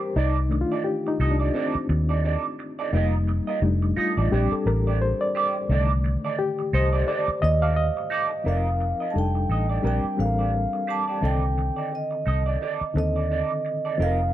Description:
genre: lush 1970s-style soul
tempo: 87 BPM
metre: 4/4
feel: swing 58% on 16ths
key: C dorian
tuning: A4 = 440 Hz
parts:
  - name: reed electric piano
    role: accompaniment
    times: 0.0-14.3 s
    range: D3 to F5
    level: -27 LUFS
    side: left 2 dB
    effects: overdrive, fast tremolo
  - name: electric guitar through a small old amp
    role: riff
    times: 0.0-14.2 s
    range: Eb4 to Eb5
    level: -29 LUFS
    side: right 7 dB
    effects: wah
  - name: vintage muted fingered electric bass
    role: bass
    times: 0.2-14.3 s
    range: F1 to Eb2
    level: -23 LUFS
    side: equal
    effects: none
  - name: vibraphone with soft mallets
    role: melody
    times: 7.4-14.3 s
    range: Eb5 to A5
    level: -28 LUFS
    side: right 2 dB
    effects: none
room: digital ambience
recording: none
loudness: -22 LUFS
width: side -13 dB against mid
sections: 0.0-8.5 A section; 8.5-14.3 B section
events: reed electric piano solo 0.0-8.5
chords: 0.2 Cm69; 2.9 F7sus4; 3.6 F13; 4.3 Bb69; 5.7 Cm69; 8.5 F7sus4; 9.2 F13; 9.8 Bb69; 11.2 Cm69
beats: | 0.16 0.86 1.55 2.24 | 2.93 3.62 4.31 5.00 | 5.69 6.38 7.08 7.77 | 8.46 9.15 9.84 10.53 | 11.23 11.92 12.61 13.30 | 13.99

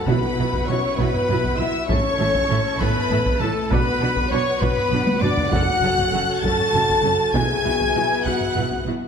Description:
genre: cinematic, epic orchestral film score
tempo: 66 BPM (dotted quarters)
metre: 6/8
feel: straight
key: unclear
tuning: A4 = 440 Hz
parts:
  - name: rich symphonic violin section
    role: melody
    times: 0.0-8.9 s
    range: A5 to A6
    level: -28 LUFS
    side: left 4 dB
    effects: none
  - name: mellow hollow silver concert flute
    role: second line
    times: 0.0-8.9 s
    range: A4 to A5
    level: -29 LUFS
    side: left 3 dB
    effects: none
  - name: warm symphonic violin section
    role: second line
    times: 0.0-8.9 s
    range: A4 to A5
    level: -28 LUFS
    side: left 4 dB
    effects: none
  - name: dark symphonic string section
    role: sustained chords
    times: 0.0-9.1 s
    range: B3 to A5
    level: -30 LUFS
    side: left 2 dB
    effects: none
  - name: mellow French horn section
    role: sustained chords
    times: 0.0-8.9 s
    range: A3 to C#5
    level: -26 LUFS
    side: left 1 dB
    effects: none
  - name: mellow trumpet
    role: stabs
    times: 0.0-8.9 s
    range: A4 to A5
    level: -26 LUFS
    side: right 1 dB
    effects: none
  - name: warm symphonic viola section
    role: accompaniment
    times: 0.1-9.0 s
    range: C#4 to A4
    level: -30 LUFS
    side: right 1 dB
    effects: none
  - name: warm symphonic cello section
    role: bass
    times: 0.1-8.9 s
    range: F#2 to B2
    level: -28 LUFS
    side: right 3 dB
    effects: none
  - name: warm symphonic double bass section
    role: bass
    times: 0.1-8.9 s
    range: F#1 to B1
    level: -28 LUFS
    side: right 5 dB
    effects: none
  - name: taiko ensemble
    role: drums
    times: 0.1-9.1 s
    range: none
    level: -26 LUFS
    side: equal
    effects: none
  - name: timpani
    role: percussion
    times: 5.5-6.4 s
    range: F#2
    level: -33 LUFS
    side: left 1 dB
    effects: none
room: wet scoring stage reverb, RT60 1.6 s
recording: none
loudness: -18 LUFS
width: side -7 dB against mid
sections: 0.0-9.1 A section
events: drum fill 5.1-5.5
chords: 0.1 Bsus4; 1.9 A; 3.7 Bm; 5.5 F#m; 7.3 Bsus4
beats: | 0.07 0.98 | 1.89 2.80 | 3.71 4.61 | 5.52 6.43 | 7.34 8.25

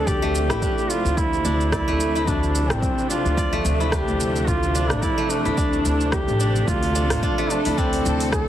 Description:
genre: organic downtempo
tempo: 109 BPM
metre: 4/4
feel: swing 56% on 16ths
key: D minor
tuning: A4 = 438 Hz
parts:
  - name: warm duduk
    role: melody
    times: 0.0-8.5 s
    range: C4 to A4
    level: -24 LUFS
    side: right 1 dB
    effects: tape echo
  - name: warm studio string section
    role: sustained chords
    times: 0.0-8.5 s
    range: C3 to A4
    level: -29 LUFS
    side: equal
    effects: sidechain pumping
  - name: steel-string zither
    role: arpeggios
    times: 0.0-8.5 s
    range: A3 to D5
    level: -26 LUFS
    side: left 1 dB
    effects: tape echo
  - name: upright bass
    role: bass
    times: 0.0-8.4 s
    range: A1 to D2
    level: -24 LUFS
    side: equal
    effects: tube saturation, sidechain pumping
  - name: deep house drum kit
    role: drums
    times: 0.1-8.5 s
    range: hi-hat, rim click, shaker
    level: -29 LUFS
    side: right 1 dB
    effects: overdrive, studio reverb
  - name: electronic kick drum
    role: drums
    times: 0.1-8.5 s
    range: none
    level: -26 LUFS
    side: equal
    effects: overdrive, studio reverb
  - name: udu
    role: percussion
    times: 7.1-7.2 s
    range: none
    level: -34 LUFS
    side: equal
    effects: none
room: light reverb, small room ambience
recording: heavily compressed radio sound, multiband compression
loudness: -19 LUFS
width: side -11 dB against mid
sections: 0.0-8.5 A section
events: none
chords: 0.0 Dm7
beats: | 0.07 0.62 1.17 1.72 | 2.27 2.82 3.37 3.92 | 4.47 5.03 5.58 6.13 | 6.68 7.23 7.78 8.33

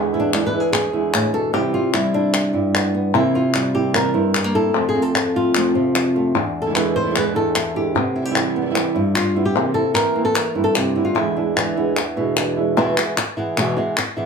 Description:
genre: flamenco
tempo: 150 BPM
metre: 4/4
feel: straight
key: unclear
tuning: A4 = 442 Hz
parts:
  - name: flamenco guitar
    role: melody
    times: 0.0-14.3 s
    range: E2 to C5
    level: -19 LUFS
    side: left 1 dB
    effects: plate reverb
  - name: flamenco guitar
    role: stabs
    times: 0.0-12.8 s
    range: E2 to F4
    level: -22 LUFS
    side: right 5 dB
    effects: none
  - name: palmas hand claps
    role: percussion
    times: 0.3-14.2 s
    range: none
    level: -22 LUFS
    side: left 4 dB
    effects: none
room: wet studio reverb, RT60 0.5 s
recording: heard from further back in the room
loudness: -17 LUFS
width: side -5 dB against mid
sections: 0.0-12.8 A section; 12.8-14.3 B section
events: none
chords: 0.0 E7; 1.5 Cmaj7; 3.1 C7; 4.7 F; 6.3 E7; 8.0 Cmaj7; 9.6 C7; 11.2 E7; 12.8 E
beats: 0.33 0.73 1.14 | 1.54 1.94 2.34 2.74 | 3.14 3.54 3.94 4.34 | 4.74 5.14 5.54 5.95 | 6.35 6.75 7.15 7.55 | 7.95 8.35 8.76 9.16 | 9.56 9.96 10.36 10.76 | 11.16 11.57 11.97 12.37 | 12.77 13.17 13.57 13.97

